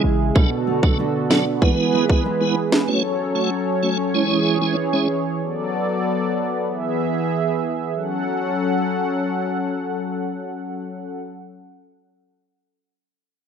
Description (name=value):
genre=dancehall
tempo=95 BPM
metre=4/4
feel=straight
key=F# minor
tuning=A4 = 440 Hz
part: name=tonewheel organ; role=accompaniment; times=0.0-5.1 s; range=F#3 to C#5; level=-21 LUFS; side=right 2 dB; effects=chorus vibrato, fast rotary speaker
part: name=warm analog pad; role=sustained chords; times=0.0-11.2 s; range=C#3 to F#5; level=-21 LUFS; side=equal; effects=chorus, sidechain pumping
part: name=nylon-string guitar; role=arpeggios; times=0.0-3.0 s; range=B2 to G#4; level=-26 LUFS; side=right 2 dB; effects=none
part: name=island pop drum kit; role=drums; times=0.4-2.9 s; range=kick drum, snare drum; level=-17 LUFS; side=equal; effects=overdrive
room=digital ambience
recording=rough home demo mix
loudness=-19 LUFS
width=side -7 dB against mid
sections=0.0-7.9 A section; 7.9-10.5 B section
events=none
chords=0.4 Bm7; 1.6 E; 2.9 F#m; 4.1 C#m; 5.4 Bm7; 6.7 E; 7.9 F#m